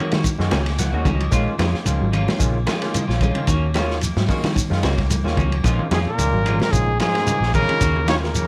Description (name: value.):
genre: afrobeat.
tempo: 111 BPM.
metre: 4/4.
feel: swing 54% on 16ths.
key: Bb minor.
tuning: A4 = 439 Hz.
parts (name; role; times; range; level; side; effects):
overdriven tine electric piano; accompaniment; 0.0-8.3 s; Eb3 to Ab5; -31 LUFS; equal; subtle chorus, plate reverb.
mellow electric guitar; arpeggios; 0.0-8.5 s; Db3 to Ab3; -31 LUFS; equal; none.
clean electric guitar; stabs; 0.0-8.3 s; Eb3 to Gb4; -31 LUFS; equal; lush chorus, plate reverb.
vintage muted fingered electric bass; bass; 0.1-8.5 s; Ab1 to Eb3; -24 LUFS; equal; none.
crunchy breakbeat drum kit; drums; 0.1-8.5 s; hi-hat, kick drum, ride cymbal, snare drum; -27 LUFS; equal; none.
congas; percussion; 0.1-8.2 s; none; -29 LUFS; equal; none.
shekere; percussion; 0.3-8.5 s; none; -29 LUFS; equal; none.
breathy trumpet; melody; 5.9-8.5 s; Ab4 to Db5; -24 LUFS; equal; plate reverb.
trombone with metal mute; second line; 5.9-8.5 s; Ab2 to Eb3; -30 LUFS; equal; plate reverb.
room: moderate studio reverb, RT60 0.6 s.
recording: none.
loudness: -20 LUFS.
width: mono.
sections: 0.0-8.5 A section.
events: tine electric piano fill 0.2-1.3.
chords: 0.0 Ebm7; 1.3 Bbm7; 3.5 Ebm7; 5.6 Bbm7; 7.8 Ebm7.